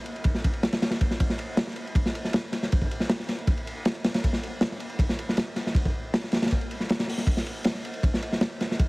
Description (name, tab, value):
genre	drum and bass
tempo	158 BPM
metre	4/4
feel	straight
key	none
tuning	none
part	crunchy breakbeat drum kit	drums	0.1-8.9 s	hi-hat, kick drum, ride cymbal, snare drum	-24 LUFS	equal	none
room	light reverb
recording	heavily compressed radio sound, multiband compression, vinyl crackle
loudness	-24 LUFS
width	side -26 dB against mid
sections	0.0-8.9 A section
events	none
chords	none